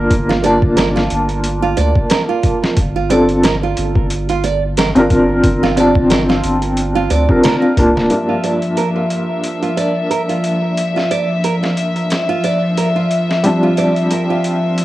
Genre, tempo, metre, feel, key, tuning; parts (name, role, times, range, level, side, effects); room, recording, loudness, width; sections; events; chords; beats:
trip hop; 90 BPM; 4/4; swing 56% on 16ths; G dorian; A4 = 439 Hz
felt-muted upright piano; accompaniment; 0.0-14.8 s; G2 to A5; -16 LUFS; left 1 dB; tremolo, vintage 12-bit sampler grit, tape echo
nylon-string guitar; arpeggios; 0.0-14.8 s; F4 to D5; -20 LUFS; right 6 dB; low-pass filter, analog delay
soft dub sub bass; bass; 0.0-8.1 s; D1 to D2; -20 LUFS; equal
boom bap sampler-style drum kit; drums; 0.1-14.8 s; hi-hat, kick drum, snare drum; -18 LUFS; equal; overdrive, high-pass filter on hats, small room ambience, high-pass filter on kick, high-pass filter on snare
rich chamber string section; sustained chords; 8.1-14.8 s; F3 to E5; -17 LUFS; left 1 dB; vintage 12-bit sampler grit, low-pass filter
light reverb, studio reverb; home recording on cassette; -13 LUFS; side -15 dB against mid
0.0-8.1 A section; 8.1-14.8 B section
0.0 Gm7; 2.8 Bbmaj7/G; 8.1 Gm7; 13.4 Bbmaj7 (rootless)
| 0.11 0.77 1.44 2.11 | 2.77 3.44 4.11 4.77 | 5.44 6.11 6.77 7.44 | 8.11 8.77 9.44 10.11 | 10.77 11.44 12.11 12.77 | 13.44 14.11 14.77